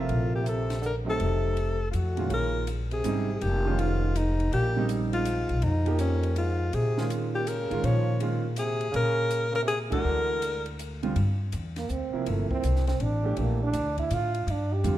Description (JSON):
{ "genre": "modal jazz", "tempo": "163 BPM", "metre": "3/4", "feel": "swing 65% on 8ths", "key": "Bb dorian, G dorian from 11.2 s", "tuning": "A4 = 440 Hz", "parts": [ { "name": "clear alto saxophone", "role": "melody", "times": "0.0-10.8 s", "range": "Db4 to Db5", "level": "-29 LUFS", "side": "left 2 dB", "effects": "none" }, { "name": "clear trombone", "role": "second line", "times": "0.0-15.0 s", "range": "F2 to G4", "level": "-34 LUFS", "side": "right 4 dB", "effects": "none" }, { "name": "warm concert grand piano", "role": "accompaniment", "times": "0.0-15.0 s", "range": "Bb2 to E5", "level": "-32 LUFS", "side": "right 4 dB", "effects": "none" }, { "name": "upright bass", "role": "bass", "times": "0.0-15.0 s", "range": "F1 to Bb2", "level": "-28 LUFS", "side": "equal", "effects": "none" }, { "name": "compact cocktail drum kit", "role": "drums", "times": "0.1-15.0 s", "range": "hi-hat, kick drum, ride cymbal, snare drum", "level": "-42 LUFS", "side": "left 1 dB", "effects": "none" } ], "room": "moderate recital hall reverb, RT60 1.7 s", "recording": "dark, warm production", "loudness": "-25 LUFS", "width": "side -13 dB against mid", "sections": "0.0-2.3 A section; 2.3-11.2 B section; 11.2-15.0 C section", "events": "band accent 9.9; trombone solo 11.2-15.0", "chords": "0.0 Gm11 (rootless); 1.2 F7b9; 2.3 Bbm7; 10.1 Daug; 11.2 Gm11" }